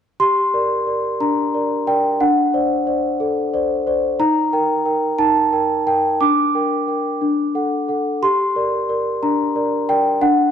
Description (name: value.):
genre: classical, lullaby for celesta.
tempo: 60 BPM (dotted quarters).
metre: 6/8.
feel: straight.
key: G minor.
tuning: A4 = 440 Hz.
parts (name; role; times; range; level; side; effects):
large celesta; solo; 0.2-10.5 s; D4 to D6; -16 LUFS; equal; none.
room: moderate scoring stage reverb, RT60 1.6 s.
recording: dark, warm production.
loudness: -16 LUFS.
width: side -8 dB against mid.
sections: 0.2-10.5 A section.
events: none.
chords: 0.2 Gm; 2.2 D7; 4.2 Eb; 6.2 Gm/D; 7.2 D; 8.2 Gm.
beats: | 0.20 1.21 | 2.21 3.20 | 4.19 5.18 | 6.21 7.22 | 8.22 9.22 | 10.22.